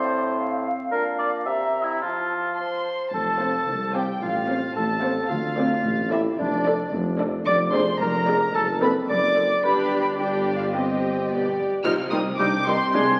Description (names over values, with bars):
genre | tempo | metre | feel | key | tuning
cinematic, playful, whimsical film cue | 110 BPM | 2/4 | straight | F major, C minor from 7.5 s | A4 = 441 Hz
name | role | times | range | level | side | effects
mellow clarinet | second line | 0.0-12.8 s | C4 to D5 | -29 LUFS | equal | none
mellow small flute group | second line | 0.0-2.8, 12.1-12.7 s | F5 to Bb5 | -35 LUFS | equal | none
warm oboe | second line | 0.0-2.6, 12.4-13.2 s | E4 to Ab5 | -28 LUFS | equal | none
warm bassoon | accompaniment | 0.0-2.9, 12.1-12.8 s | A2 to F3 | -32 LUFS | equal | none
worn celesta | melody | 2.6-11.5 s | D5 to D6 | -33 LUFS | equal | none
rich chamber violin section | second line | 2.6-13.0 s | Eb4 to D6 | -32 LUFS | equal | none
dark studio cello section | bass | 3.1-13.2 s | C2 to C3 | -36 LUFS | equal | none
mellow tuba | bass | 3.1-13.2 s | F1 to D2 | -31 LUFS | equal | none
warm studio double bass section | bass | 3.1-13.2 s | F1 to D2 | -43 LUFS | equal | none
warm studio violin section | melody | 3.4-13.2 s | D5 to F6 | -31 LUFS | equal | none
warm studio viola section | accompaniment | 3.4-13.0 s | G3 to C5 | -28 LUFS | equal | none
mellow French horn section | sustained chords | 11.8-13.2 s | C4 to F4 | -31 LUFS | equal | none
clash cymbals and concert bass drum | percussion | 11.8-12.9 s | none | -44 LUFS | equal | none
room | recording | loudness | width
wet scoring stage reverb, RT60 1.7 s | very old 78 rpm record, vinyl crackle | -23 LUFS | mono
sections
0.0-3.1 A section; 3.1-11.8 B section; 11.8-13.2 C section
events
band accent 11.8-12.4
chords
0.0 F/A; 0.9 Bb; 1.5 C7; 2.0 F; 4.2 F/A; 5.3 Dm7; 6.4 Dm/F; 7.5 Ddim/F; 8.5 D7/F#; 9.6 G5; 10.7 Cm/G; 11.3 G; 11.8 Cm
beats
0.38 | 0.92 1.46 | 2.02 2.58 | 3.13 3.68 | 4.22 4.76 | 5.30 5.85 | 6.39 6.93 | 7.47 8.01 | 8.55 9.09 | 9.63 10.18 | 10.74 11.29 | 11.85 12.39 | 12.94